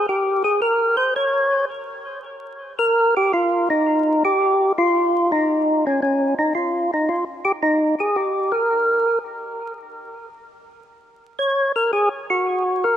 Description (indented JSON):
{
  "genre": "jazz",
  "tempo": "111 BPM",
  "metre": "4/4",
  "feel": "swing 67% on 8ths",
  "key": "Eb mixolydian",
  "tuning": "A4 = 436 Hz",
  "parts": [
    { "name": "percussive tonewheel organ", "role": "solo", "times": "0.0-13.0 s", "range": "Db4 to Db5", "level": "-18 LUFS", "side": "equal", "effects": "slow rotary speaker, overdrive, tape echo" }
  ],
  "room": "light reverb",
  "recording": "rough home demo mix, vinyl crackle",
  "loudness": "-17 LUFS",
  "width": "side -10 dB against mid",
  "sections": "0.0-3.3 A section; 3.3-13.0 B section",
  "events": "tonewheel organ solo 0.0-3.3",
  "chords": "none"
}